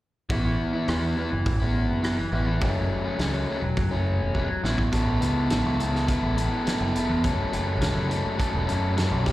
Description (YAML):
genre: indie rock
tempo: 104 BPM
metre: 4/4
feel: straight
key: unclear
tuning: A4 = 439 Hz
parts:
  - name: overdriven semi-hollow guitar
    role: riff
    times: 0.3-9.3 s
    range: E3 to A4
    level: -26 LUFS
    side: left 1 dB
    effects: slapback echo
  - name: growling picked electric bass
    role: bass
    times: 0.3-9.3 s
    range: E1 to F#2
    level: -26 LUFS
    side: equal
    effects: overdrive
  - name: loose indie drum kit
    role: drums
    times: 0.3-9.3 s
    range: hi-hat, kick drum, rim click, snare drum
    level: -30 LUFS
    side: equal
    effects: none
room: little or no reverb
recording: live gig heard through the venue's PA, recital hall reverb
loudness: -22 LUFS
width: side -16 dB against mid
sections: 0.3-4.9 A section; 4.9-9.3 B section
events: drum fill 4.3-4.9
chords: 0.3 Asus2; 2.6 F#m7; 4.6 Asus2; 7.2 F#m